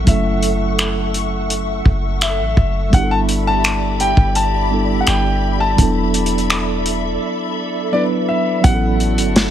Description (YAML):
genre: contemporary R&B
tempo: 84 BPM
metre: 4/4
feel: straight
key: A mixolydian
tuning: A4 = 440 Hz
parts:
  - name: mellow tine electric piano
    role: accompaniment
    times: 0.0-9.5 s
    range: F#3 to B4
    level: -21 LUFS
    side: right 2 dB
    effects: medium stereo tremolo
  - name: glassy FM pad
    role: sustained chords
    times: 0.0-9.5 s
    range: F#4 to C#6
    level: -24 LUFS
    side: left 1 dB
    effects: ensemble chorus, built-in reverb, sidechain pumping
  - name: warm 808-style bass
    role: bass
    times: 0.0-9.5 s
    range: E1 to A1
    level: -20 LUFS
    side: equal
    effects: none
  - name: warm concert grand piano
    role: melody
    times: 0.1-9.5 s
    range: D5 to A5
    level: -21 LUFS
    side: left 2 dB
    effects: ping-pong delay
  - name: warm soul drum kit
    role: drums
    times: 0.1-9.5 s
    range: finger snaps, hi-hat, kick drum, snare drum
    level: -16 LUFS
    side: equal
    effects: none
room: light reverb, small room ambience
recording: none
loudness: -14 LUFS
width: side -10 dB against mid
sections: 0.0-8.6 A section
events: none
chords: 0.1 F#m7; 2.9 G6; 5.8 E7sus4; 8.6 A6